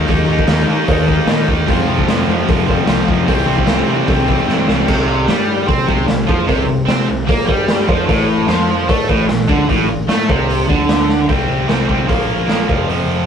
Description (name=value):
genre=punk rock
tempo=150 BPM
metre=4/4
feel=straight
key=unclear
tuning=A4 = 440 Hz
part: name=cranked stack guitar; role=riff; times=0.0-13.3 s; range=F2 to Eb4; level=-21 LUFS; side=left 3 dB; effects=overdrive
part: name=distorted electric guitar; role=riff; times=0.0-11.3 s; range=A2 to G4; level=-20 LUFS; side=equal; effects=distortion
part: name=tight distorted guitar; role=riff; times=0.0-13.3 s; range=F2 to Eb4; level=-20 LUFS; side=right 6 dB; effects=distortion
part: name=picked electric bass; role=bass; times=0.0-13.2 s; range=F1 to Eb3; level=-21 LUFS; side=left 1 dB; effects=none
part: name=raw garage drum kit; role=drums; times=0.1-13.0 s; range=crash cymbal, hi-hat, kick drum, snare drum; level=-16 LUFS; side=equal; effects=none
room=moderate studio reverb, RT60 0.5 s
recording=rough rehearsal-room recording, tube saturation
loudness=-12 LUFS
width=side -7 dB against mid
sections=0.0-4.9 A section; 4.9-11.3 B section; 11.3-13.3 C section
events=drum fill 4.5-4.9, 11.1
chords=0.0 Eb; 1.7 F; 3.3 C; 4.9 C5; 8.1 Bb5; 11.3 C5; 12.1 Bb5; 12.7 F5